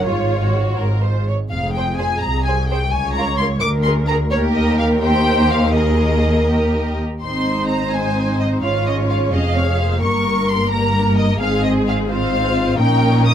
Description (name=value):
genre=quick classical-period movement for string orchestra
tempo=85 BPM (dotted quarters)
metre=6/8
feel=straight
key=Ab major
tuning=A4 = 440 Hz
part: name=rich studio violin section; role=melody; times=0.0-13.3 s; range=Db5 to Eb6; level=-22 LUFS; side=left 1 dB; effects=none
part: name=warm studio violin section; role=second line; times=0.0-13.3 s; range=F4 to Eb5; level=-24 LUFS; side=right 2 dB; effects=none
part: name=warm studio viola section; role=accompaniment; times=0.0-13.3 s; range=Bb3 to Db5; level=-22 LUFS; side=left 1 dB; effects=none
part: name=rich studio cello section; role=bass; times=0.0-13.3 s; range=C2 to Bb2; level=-21 LUFS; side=equal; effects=none
part: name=warm studio double bass section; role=bass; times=0.0-13.3 s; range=F1 to Eb2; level=-20 LUFS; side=right 1 dB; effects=none
room=little or no reverb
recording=close, detailed microphones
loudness=-15 LUFS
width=side -9 dB against mid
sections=0.0-7.2 A section; 7.2-13.3 B section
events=none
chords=0.1 Db/Ab; 1.5 Fm; 2.9 Bbm/Db; 3.6 Bb7/D; 4.3 Eb; 5.7 Ebsus4; 7.2 Ab; 8.6 Db/Ab; 10.0 Gdim; 11.4 Ab; 12.8 Eb7/Bb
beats=| 0.06 0.78 | 1.51 2.22 | 2.93 3.62 | 4.32 5.02 | 5.75 6.48 | 7.22 7.92 | 8.63 9.33 | 10.02 10.71 | 11.41 12.10 | 12.80